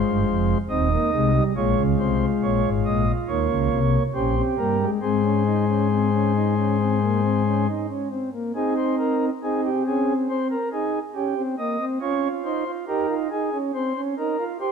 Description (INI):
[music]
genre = classical, baroque-style 4-part fugue for pipe organ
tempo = 69 BPM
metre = 4/4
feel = straight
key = Ab major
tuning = A4 = 440 Hz
[part]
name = pipe organ, flutes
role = solo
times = 0.0-14.7 s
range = Eb1 to Eb5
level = -20 LUFS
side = left 1 dB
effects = none
[sound]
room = wet scoring stage reverb, RT60 1.6 s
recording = none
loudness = -20 LUFS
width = side -6 dB against mid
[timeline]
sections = 0.0-8.5 A section; 8.5-14.7 B section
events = none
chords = 0.0 Ab; 1.6 Bbm7; 3.3 Eb7; 5.0 Ab; 8.5 Ab/C; 10.3 Cm; 12.0 Db; 13.7 Ab/C (rootless)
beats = 0.70 | 1.55 2.42 3.28 4.15 | 5.03 5.91 6.79 7.67 | 8.55 9.42 10.28 11.14 | 12.01 12.88 13.74 14.60